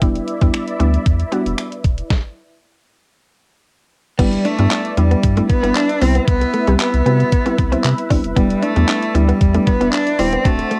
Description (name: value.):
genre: dance-pop.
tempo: 115 BPM.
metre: 4/4.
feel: straight.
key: unclear.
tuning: A4 = 440 Hz.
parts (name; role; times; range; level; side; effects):
mallet-like synth pluck; accompaniment; 0.0-10.8 s; C3 to G4; -24 LUFS; equal; chorus, sidechain pumping, cassette tape.
filtered supersaw swell; sustained chords; 0.0-10.8 s; E4 to A5; -30 LUFS; equal; sidechain pumping, cassette tape.
warm sub bass; bass; 0.0-10.6 s; D1 to C3; -20 LUFS; equal; sidechain pumping.
detuned 8-bit digital drum machine; drums; 0.0-10.8 s; crash cymbal, finger snaps, handclaps, hi-hat, kick drum, snare drum; -21 LUFS; equal; overdrive, cassette tape.
rich cello; melody; 4.2-10.8 s; G3 to D4; -21 LUFS; equal; cassette tape.
direct-recorded clean electric guitar; riff; 4.2-10.8 s; G3 to D4; -24 LUFS; equal; subtle chorus, cassette tape.
room: light reverb.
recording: home recording on cassette.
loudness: -16 LUFS.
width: mono.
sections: 0.0-4.2 A section; 4.2-10.8 B section.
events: stop 2.1-4.2.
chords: 0.0 Em7; 2.1 N.C.; 4.2 G6; 6.0 Cmaj7; 8.4 Em7.